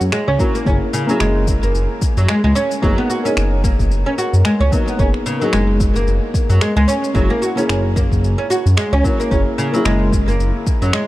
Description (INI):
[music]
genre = organic downtempo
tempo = 111 BPM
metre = 4/4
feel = swing 57% on 16ths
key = F# mixolydian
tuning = A4 = 440 Hz
[part]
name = felt-muted upright piano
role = accompaniment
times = 0.0-11.1 s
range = A#3 to A#4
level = -22 LUFS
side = left 2 dB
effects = sidechain pumping, tape echo
[part]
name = smooth synth bass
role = bass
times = 0.0-10.9 s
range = F#1 to F#2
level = -16 LUFS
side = equal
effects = sidechain pumping
[part]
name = electronic shaker and finger snaps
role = drums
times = 0.0-11.1 s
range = none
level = -26 LUFS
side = left 1 dB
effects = overdrive, studio reverb
[part]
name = oud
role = arpeggios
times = 0.1-11.1 s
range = C#3 to F#4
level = -19 LUFS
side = right 1 dB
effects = low-pass filter, tape echo
[part]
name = electronic kick drum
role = drums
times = 0.4-10.8 s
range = none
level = -18 LUFS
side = equal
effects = overdrive, studio reverb
[sound]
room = little or no reverb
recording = dark, warm production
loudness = -14 LUFS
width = side -16 dB against mid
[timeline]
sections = 0.0-11.1 A section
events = none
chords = 0.0 F#7; 2.8 G#madd9/F#; 7.2 F#7